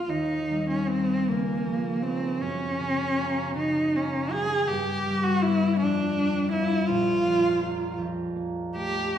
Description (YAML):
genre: classical, impressionist duo for cello and harp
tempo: 53 BPM (dotted quarters)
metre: 6/8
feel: uneven beats, rubato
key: unclear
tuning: A4 = 439 Hz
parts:
  - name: rich cello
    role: melody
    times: 0.0-9.2 s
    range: Bb3 to Ab4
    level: -26 LUFS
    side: right 1 dB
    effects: none
  - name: concert harp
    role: accompaniment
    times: 0.0-9.2 s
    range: Bb1 to G5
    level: -28 LUFS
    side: left 2 dB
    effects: none
room: wet recital hall reverb, RT60 1.6 s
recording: heard from further back in the room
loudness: -23 LUFS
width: side -10 dB against mid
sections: 0.1-9.2 A section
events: none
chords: 0.1 Eb6; 1.3 Db69; 2.4 Gbmaj7; 4.7 G6; 5.8 Fsus2; 6.9 Bb5